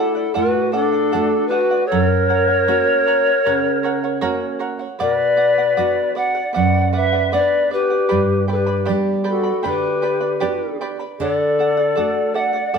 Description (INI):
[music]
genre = andean folk, Andean ensemble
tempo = 78 BPM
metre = 4/4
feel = straight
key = B minor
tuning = A4 = 439 Hz
[part]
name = polished pan flute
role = melody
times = 0.0-12.8 s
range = A4 to F#5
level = -18 LUFS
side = left 2 dB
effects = none
[part]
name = large quena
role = second line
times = 0.0-12.8 s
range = D4 to E5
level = -22 LUFS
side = left 2 dB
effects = none
[part]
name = charango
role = accompaniment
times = 0.0-12.8 s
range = G4 to B5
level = -25 LUFS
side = right 4 dB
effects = none
[part]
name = nylon-string guitar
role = accompaniment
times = 0.0-12.8 s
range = F#2 to F#5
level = -23 LUFS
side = right 3 dB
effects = none
[sound]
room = wet stone room reverb, RT60 1.4 s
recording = band playing live in one room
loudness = -16 LUFS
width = side -6 dB against mid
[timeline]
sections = 0.0-12.8 A section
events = none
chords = 0.0 D; 1.9 F#; 5.0 Bm; 8.1 G; 11.2 D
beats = 0.36 1.13 | 1.91 2.68 3.45 4.23 | 5.00 5.77 6.55 7.32 | 8.09 8.87 9.64 10.41 | 11.19 11.96 12.74